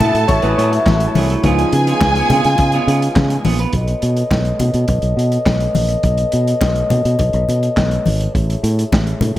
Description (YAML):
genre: disco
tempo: 104 BPM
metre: 4/4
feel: straight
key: unclear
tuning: A4 = 439 Hz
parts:
  - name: warm studio violin section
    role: second line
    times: 0.0-3.4 s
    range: G#4 to A5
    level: -19 LUFS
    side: right 1 dB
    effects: none
  - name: dark grand piano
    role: accompaniment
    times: 0.0-3.8 s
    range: E#3 to A5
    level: -21 LUFS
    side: left 3 dB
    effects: none
  - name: semi-hollow electric guitar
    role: accompaniment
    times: 0.0-3.7 s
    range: A3 to B4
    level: -24 LUFS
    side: right 5 dB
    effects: spring reverb
  - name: mellow French horn section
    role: sustained chords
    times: 0.0-9.4 s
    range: C#3 to D#5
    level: -21 LUFS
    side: left 1 dB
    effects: none
  - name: fingered electric bass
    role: bass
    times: 0.0-9.4 s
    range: G#1 to C#3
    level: -17 LUFS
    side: equal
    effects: none
  - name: vintage drum kit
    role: drums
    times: 0.0-9.4 s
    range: handclaps, hi-hat, kick drum, snare drum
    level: -20 LUFS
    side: equal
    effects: none
  - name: congas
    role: percussion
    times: 0.0-9.3 s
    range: none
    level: -22 LUFS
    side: left 3 dB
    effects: none
room: light reverb, studio ambience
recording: none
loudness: -13 LUFS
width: side -14 dB against mid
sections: 0.0-3.7 A section; 3.7-9.4 B section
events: grand piano solo 0.0-3.7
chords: 0.0 F#m9/A; 1.4 C#7; 3.7 B9; 8.3 Amaj7